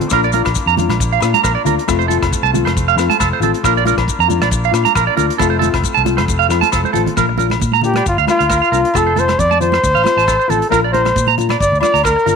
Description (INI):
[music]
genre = highlife guitar band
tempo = 136 BPM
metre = 4/4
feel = swing 55% on 16ths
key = Bb major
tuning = A4 = 435 Hz
[part]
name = nylon-string guitar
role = accompaniment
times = 0.0-12.4 s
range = F3 to F4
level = -21 LUFS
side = left 15 dB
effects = none
[part]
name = combo organ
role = sustained chords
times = 0.0-7.2 s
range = A3 to F4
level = -26 LUFS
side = left 1 dB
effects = lush chorus
[part]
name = warm soul drum kit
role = drums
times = 0.0-12.4 s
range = hi-hat, kick drum, rim click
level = -23 LUFS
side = equal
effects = none
[part]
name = congas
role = percussion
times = 0.0-12.4 s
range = none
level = -24 LUFS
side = right 11 dB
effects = none
[part]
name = maracas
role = percussion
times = 0.0-12.4 s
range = none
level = -28 LUFS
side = left 17 dB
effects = none
[part]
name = clean electric guitar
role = arpeggios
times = 0.1-12.3 s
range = A4 to Bb5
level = -17 LUFS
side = right 12 dB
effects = slapback echo
[part]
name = fingered electric bass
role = bass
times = 0.1-12.4 s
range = F1 to Bb2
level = -19 LUFS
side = left 1 dB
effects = none
[part]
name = agogo bells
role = percussion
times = 0.1-12.2 s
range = none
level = -25 LUFS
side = left 15 dB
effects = none
[part]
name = trumpet with bucket mute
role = melody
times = 7.9-12.4 s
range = F4 to D5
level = -14 LUFS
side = equal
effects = none
[sound]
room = light reverb, studio ambience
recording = 1960s-style stereo with parts hard left and right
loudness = -12 LUFS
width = side -5 dB against mid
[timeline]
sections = 0.0-7.2 A section; 7.2-12.4 B section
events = drum fill 6.8-7.2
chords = 0.1 Bb; 1.9 F; 3.6 Bb; 5.4 F; 7.2 Bb; 8.9 F; 10.7 Bb